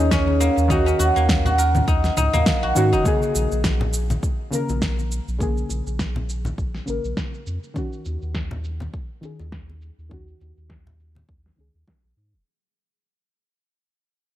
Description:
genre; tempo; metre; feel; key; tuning
organic downtempo; 102 BPM; 4/4; swing 56% on 16ths; unclear; A4 = 445 Hz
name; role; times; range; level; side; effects
deep mellow chord stab; accompaniment; 0.0-12.5 s; Db3 to Bb4; -26 LUFS; equal; chorus, cassette tape, sidechain pumping, tape echo
guzheng; arpeggios; 0.0-5.6 s; Bb3 to Bb4; -22 LUFS; equal; tape echo
warm sub bass; bass; 0.0-12.4 s; Eb1 to Ab2; -24 LUFS; equal; sidechain pumping
deep house drum kit; drums; 0.1-12.4 s; cabasa, snare drum, toms; -26 LUFS; equal; low-pass filter on perc, low-pass filter on snare, low-pass filter on toms, low-pass filter on room
electronic kick drum; drums; 0.1-12.0 s; none; -25 LUFS; equal; none
congas and bongos; percussion; 0.3-11.3 s; none; -31 LUFS; left 2 dB; none
room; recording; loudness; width
light reverb, digital ambience; none; -19 LUFS; side -12 dB against mid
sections
0.0-3.1 A section; 3.1-12.5 B section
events
fade-out 3.1-12.5; filter sweep on drum 3.1-12.5; filter sweep on synth stab 3.1-12.5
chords
0.0 Ebm7; 3.1 Bbm7; 7.8 Ebm7

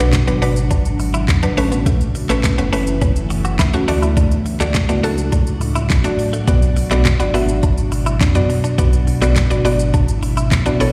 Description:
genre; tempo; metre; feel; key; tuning
dance-pop; 104 BPM; 4/4; straight; B dorian; A4 = 440 Hz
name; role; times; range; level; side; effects
mallet-like synth pluck; accompaniment; 0.0-10.9 s; F#3 to E5; -23 LUFS; equal; chorus, sidechain pumping, slapback echo
ethereal airy pad; sustained chords; 0.0-10.9 s; A2 to F#4; -25 LUFS; equal; ensemble chorus, built-in reverb, phaser, sidechain pumping
clean electric guitar; riff; 0.0-10.8 s; A3 to F#4; -29 LUFS; equal; analog chorus, slapback echo
sub bass with octave; bass; 0.0-10.9 s; F#1 to F#2; -21 LUFS; equal; sidechain pumping
smooth R&B drum kit; drums; 0.1-10.9 s; handclaps, hi-hat, kick drum, shaker, snare drum; -21 LUFS; equal; none
room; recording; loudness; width
light reverb; live gig heard through the venue's PA, recital hall reverb; -16 LUFS; mono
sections
0.0-10.9 A section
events
none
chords
0.0 Bm; 1.6 Aadd9; 3.9 D; 6.5 Bm

